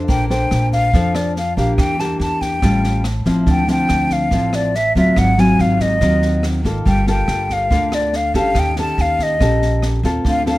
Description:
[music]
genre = bossa nova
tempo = 142 BPM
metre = 4/4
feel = straight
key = unclear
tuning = A4 = 440 Hz
[part]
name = nylon-string guitar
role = accompaniment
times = 0.0-10.6 s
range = Ab2 to C5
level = -18 LUFS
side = left 1 dB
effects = none
[part]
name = upright bass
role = bass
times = 0.0-10.6 s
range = G1 to F2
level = -20 LUFS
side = right 1 dB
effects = none
[part]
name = breathy mellow silver concert flute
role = melody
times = 0.1-10.6 s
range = D5 to A5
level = -19 LUFS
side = left 1 dB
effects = none
[part]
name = open jazz drum kit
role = drums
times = 0.1-10.5 s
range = kick drum, rim click, snare drum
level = -24 LUFS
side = right 1 dB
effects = none
[sound]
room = little or no reverb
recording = none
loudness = -14 LUFS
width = side -17 dB against mid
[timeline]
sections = 0.0-10.6 A section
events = none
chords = 0.1 Bbmaj9; 1.8 Em7b5; 2.6 A7alt; 3.5 Dm9; 5.2 Ab13; 6.9 Gm9; 8.6 Eb7#11

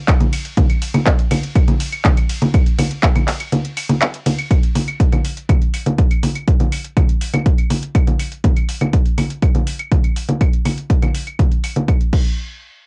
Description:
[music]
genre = techno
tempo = 122 BPM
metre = 4/4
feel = straight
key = none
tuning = none
[part]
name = electronic kick drum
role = drums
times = 0.1-12.2 s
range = none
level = -17 LUFS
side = equal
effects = none
[part]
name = techno drum kit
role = drums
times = 0.1-12.2 s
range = claves, congas, crash cymbal, handclaps, hi-hat, ride cymbal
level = -22 LUFS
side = equal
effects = sidechain pumping on hats, sidechain pumping on perc, sidechain pumping on cymbals
[sound]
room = light reverb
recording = home recording on cassette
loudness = -17 LUFS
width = mono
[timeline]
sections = 0.0-4.5 A section; 4.5-12.4 B section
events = drop 0.0-4.5; break 3.5-4.5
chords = none

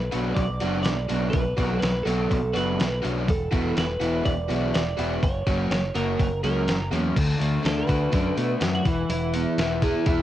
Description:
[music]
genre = indie rock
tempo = 124 BPM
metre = 4/4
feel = straight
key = B minor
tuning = A4 = 440 Hz
[part]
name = twelve-string electric guitar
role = melody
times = 0.0-10.0 s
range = E4 to D5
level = -30 LUFS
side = right 2 dB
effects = cassette tape, analog delay
[part]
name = growling fingered electric bass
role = bass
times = 0.0-10.2 s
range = E1 to B2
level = -28 LUFS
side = equal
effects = overdrive
[part]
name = overdriven semi-hollow guitar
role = riff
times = 0.1-10.2 s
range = D3 to G#4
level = -26 LUFS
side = equal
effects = cassette tape
[part]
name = dusty soul sampler-style drum kit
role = drums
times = 0.1-10.2 s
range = crash cymbal, hi-hat, kick drum, snare drum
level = -27 LUFS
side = equal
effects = cassette tape
[sound]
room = light reverb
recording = home recording on cassette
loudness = -22 LUFS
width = side -12 dB against mid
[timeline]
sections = 0.0-7.2 A section; 7.2-10.2 B section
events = clean electric guitar solo 7.2-10.2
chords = 0.0 Bm; 3.3 Esus2; 5.2 F#; 7.2 D; 8.9 E

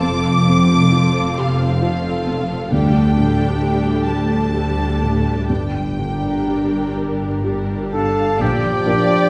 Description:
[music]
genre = cinematic, emotional film score for orchestra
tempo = 41-45 BPM (dotted quarters)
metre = 6/8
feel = rubato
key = G minor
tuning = A4 = 440 Hz
[part]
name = warm studio violin section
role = melody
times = 0.0-9.3 s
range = F5 to D6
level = -28 LUFS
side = equal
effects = none
[part]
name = dark studio violin section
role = second line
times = 0.0-9.3 s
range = F4 to F5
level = -29 LUFS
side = equal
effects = none
[part]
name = dark baby grand piano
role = accompaniment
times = 0.0-9.3 s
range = D2 to Bb4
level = -25 LUFS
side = equal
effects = none
[part]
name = warm symphonic viola section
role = accompaniment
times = 0.0-8.9 s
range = F3 to D4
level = -28 LUFS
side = equal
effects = none
[part]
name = concert harp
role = arpeggios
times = 0.0-9.3 s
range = G2 to C5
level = -26 LUFS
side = equal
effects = none
[part]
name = rich studio cello section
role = bass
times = 0.0-8.9 s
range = D2 to Bb2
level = -26 LUFS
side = equal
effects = none
[part]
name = warm studio double bass section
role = bass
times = 0.0-8.9 s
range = F1 to D2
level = -25 LUFS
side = equal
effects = none
[part]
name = dark clarinet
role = second line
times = 7.9-9.3 s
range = G4 to A4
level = -24 LUFS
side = equal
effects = none
[part]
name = silver concert flute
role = second line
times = 7.9-9.3 s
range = G5 to A5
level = -28 LUFS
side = equal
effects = none
[part]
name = warm oboe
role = second line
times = 7.9-9.3 s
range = G4 to A4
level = -25 LUFS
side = equal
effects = none
[part]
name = dark French horn section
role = sustained chords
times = 8.4-9.3 s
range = F3 to D4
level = -27 LUFS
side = equal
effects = none
[sound]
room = wet scoring stage reverb, RT60 1.7 s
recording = heard from further back in the room, nothing above 10.4 kHz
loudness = -18 LUFS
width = mono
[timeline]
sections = 0.0-8.4 A section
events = none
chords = 0.0 F; 2.7 Dsus4; 5.5 Gm; 8.4 Bb6

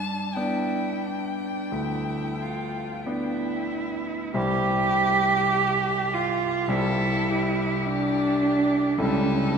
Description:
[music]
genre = classical, slow romantic movement for piano trio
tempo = 44-54 BPM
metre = 4/4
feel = rubato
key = C major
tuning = A4 = 439 Hz
[part]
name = rich violin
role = melody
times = 0.0-9.6 s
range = G4 to A5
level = -33 LUFS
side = left 5 dB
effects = none
[part]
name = rich cello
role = second line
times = 0.0-9.6 s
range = C#4 to G4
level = -25 LUFS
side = right 2 dB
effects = none
[part]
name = bright concert grand piano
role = accompaniment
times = 0.0-9.6 s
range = C2 to D5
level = -27 LUFS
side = equal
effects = none
[sound]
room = wet cathedral reverb, RT60 4.5 s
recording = recorded in a church or concert hall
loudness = -22 LUFS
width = side -6 dB against mid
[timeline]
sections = 0.0-4.4 A section; 4.4-9.6 B section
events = none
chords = 0.0 G; 4.4 C; 9.0 A7/C#

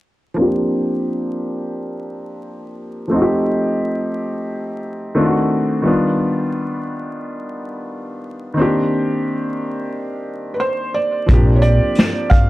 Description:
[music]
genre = lo-fi hip hop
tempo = 88 BPM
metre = 4/4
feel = swing 56% on 16ths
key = Bb major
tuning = A4 = 441 Hz
[part]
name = clear upright piano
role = accompaniment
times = 0.3-12.5 s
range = Eb3 to G4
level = -19 LUFS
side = equal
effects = low-pass filter
[part]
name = felt-muted upright piano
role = melody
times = 10.5-12.5 s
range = Cb5 to F5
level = -20 LUFS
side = right 2 dB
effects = tape echo
[part]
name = upright bass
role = bass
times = 11.3-11.8 s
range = Bb1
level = -14 LUFS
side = equal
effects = none
[part]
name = vintage brush drum kit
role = drums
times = 11.3-12.5 s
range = hi-hat, kick drum, snare drum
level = -13 LUFS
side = equal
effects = none
[sound]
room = light reverb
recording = vinyl crackle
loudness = -16 LUFS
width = side -17 dB against mid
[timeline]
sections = 0.4-11.3 A section; 11.3-12.5 B section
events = filter sweep on upright piano 0.4-11.3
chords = 0.4 Bb6; 3.1 F9; 5.2 D7b9; 5.8 G7b13; 8.6 Cm9; 11.3 Bb6

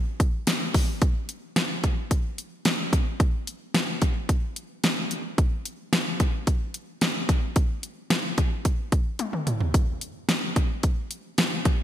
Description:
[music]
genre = pop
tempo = 110 BPM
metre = 4/4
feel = straight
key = none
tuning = none
[part]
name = pop drum kit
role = drums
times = 0.2-11.8 s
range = hi-hat, kick drum, snare drum, tambourine, toms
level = -23 LUFS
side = equal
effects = gated reverb
[sound]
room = light reverb, digital ambience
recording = bright 1980s-style digital production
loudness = -23 LUFS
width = side -12 dB against mid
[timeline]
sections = 0.0-1.0 A section; 1.0-11.8 B section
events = drum fill 9.2-9.7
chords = none

